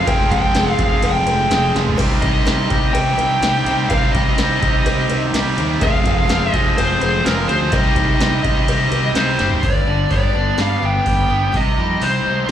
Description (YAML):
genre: classic rock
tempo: 126 BPM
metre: 4/4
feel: straight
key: C minor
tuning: A4 = 440 Hz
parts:
  - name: dark smooth lead guitar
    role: melody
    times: 0.0-12.5 s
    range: Bb4 to G5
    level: -20 LUFS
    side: left 1 dB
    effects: overdrive, slapback echo
  - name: dark upright piano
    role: accompaniment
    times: 0.0-9.6 s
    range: G4 to Ab5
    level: -31 LUFS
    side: left 1 dB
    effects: none
  - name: picked acoustic archtop guitar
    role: accompaniment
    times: 0.0-12.5 s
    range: G2 to G4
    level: -32 LUFS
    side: left 1 dB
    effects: none
  - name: biting overdriven guitar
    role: riff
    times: 0.0-12.5 s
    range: G2 to G4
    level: -23 LUFS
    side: right 9 dB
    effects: slapback echo
  - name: distorted electric guitar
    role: riff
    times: 0.0-9.6 s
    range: F2 to C4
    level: -26 LUFS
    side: left 1 dB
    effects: overdrive
  - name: overdriven electric guitar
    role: riff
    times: 0.0-12.5 s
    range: F2 to Ab4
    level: -26 LUFS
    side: left 9 dB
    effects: none
  - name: fuzz fingered electric bass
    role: bass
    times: 0.0-12.4 s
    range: F1 to G2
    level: -21 LUFS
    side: equal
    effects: overdrive
  - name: electro analog drum machine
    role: drums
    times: 0.1-12.5 s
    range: crash cymbal, hi-hat, kick drum, ride cymbal, snare drum, toms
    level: -21 LUFS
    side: equal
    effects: none
  - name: cowbell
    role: percussion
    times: 0.1-9.3 s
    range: none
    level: -30 LUFS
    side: left 2 dB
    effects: none
room: digital ambience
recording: live gig heard through the venue's PA, club reverb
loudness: -14 LUFS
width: side -10 dB against mid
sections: 0.0-9.6 A section; 9.6-12.5 B section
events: drum fill 1.7, 9.4; half time 9.6-12.5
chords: 0.0 Fmadd9; 2.0 Cm; 5.8 Fmadd9; 7.7 Cm; 9.6 G; 11.5 Cm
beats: | 0.07 0.55 1.03 1.51 | 1.99 2.47 2.95 3.43 | 3.91 4.39 4.87 5.34 | 5.82 6.30 6.77 7.25 | 7.73 8.20 8.68 9.15 | 9.63 10.11 10.59 11.06 | 11.54 12.02 12.50